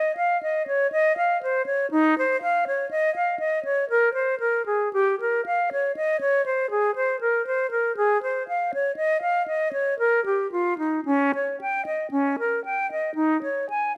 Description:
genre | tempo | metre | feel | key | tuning
classical, baroque-style fantasia for unaccompanied flute | 59 BPM | 3/4 | uneven beats, rubato | Ab major from 4.9 s | A4 = 440 Hz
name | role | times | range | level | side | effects
bright concert flute | solo | 0.0-14.0 s | Db4 to Ab5 | -24 LUFS | equal | none
room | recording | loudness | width
light reverb | close, detailed microphones, vinyl crackle | -24 LUFS | mono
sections
0.0-14.0 A section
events
none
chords
none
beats
0.91 | 1.91 2.89 3.88 | 4.92 5.95 6.96 | 7.96 8.96 9.98 | 11.05 12.11 13.16

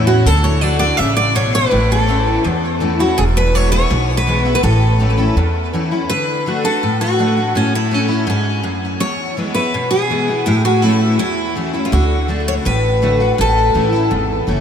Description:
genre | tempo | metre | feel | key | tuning
honky-tonk and classic country | 165 BPM | 4/4 | straight | A major | A4 = 440 Hz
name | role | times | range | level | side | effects
picked steel-string acoustic guitar | accompaniment | 0.0-14.6 s | E2 to F#4 | -18 LUFS | left 1 dB | analog chorus
upright bass | bass | 0.0-6.0, 11.9-14.6 s | E1 to A2 | -17 LUFS | right 1 dB | none
picked steel-string acoustic guitar | melody | 0.1-14.4 s | C#4 to E5 | -17 LUFS | equal | wide subtle chorus, ping-pong delay
room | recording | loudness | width
moderate huge ambient reverb, RT60 7.8 s | dreamy mix soaked in reverb | -13 LUFS | side -8 dB against mid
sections
0.3-6.1 A section; 6.1-14.6 B section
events
none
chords
0.3 D; 1.7 A; 3.2 E; 4.6 A; 6.1 D; 7.6 A; 9.0 E; 10.5 A; 11.9 D; 13.4 A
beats
| 0.26 0.63 0.99 1.36 | 1.72 2.09 2.45 2.82 | 3.18 3.54 3.91 4.27 | 4.64 5.00 5.37 5.73 | 6.10 6.46 6.83 7.19 | 7.55 7.92 8.28 8.65 | 9.01 9.38 9.74 10.11 | 10.47 10.83 11.20 11.56 | 11.93 12.29 12.65 13.02 | 13.38 13.75 14.11 14.48

